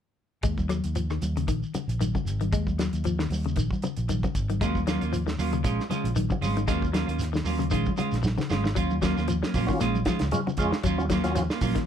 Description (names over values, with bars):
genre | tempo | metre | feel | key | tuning
afrobeat | 115 BPM | 4/4 | swing 55% on 16ths | Eb minor | A4 = 439 Hz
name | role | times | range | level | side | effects
clean electric guitar | arpeggios | 0.4-11.9 s | Bb2 to Ab3 | -31 LUFS | left 9 dB | none
fingered electric bass | bass | 0.4-11.7 s | Ab1 to F2 | -29 LUFS | equal | none
damped 70s drum kit | drums | 0.4-11.9 s | hi-hat, kick drum, rim click, snare drum | -31 LUFS | right 1 dB | none
shekere | percussion | 0.4-11.9 s | none | -36 LUFS | right 3 dB | none
congas | percussion | 0.6-11.8 s | none | -34 LUFS | right 2 dB | none
semi-hollow electric guitar | stabs | 4.6-11.8 s | F3 to F4 | -29 LUFS | right 5 dB | none
percussive tonewheel organ | accompaniment | 9.7-11.4 s | Gb3 to F4 | -30 LUFS | right 1 dB | overdrive, chorus vibrato, slow rotary speaker
room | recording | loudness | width
light reverb | none | -24 LUFS | side -9 dB against mid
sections
0.4-8.8 A section; 8.8-11.9 B section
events
drum fill 8.2-8.8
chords
0.4 Ebmadd9; 1.5 Bbm7; 2.5 Ebm; 3.6 Bbm7; 4.6 Ebm9; 5.6 Bbm7; 6.7 Ebm9; 7.7 Bbm7; 8.8 Ebm9; 9.8 Bbm7; 10.8 Ebm9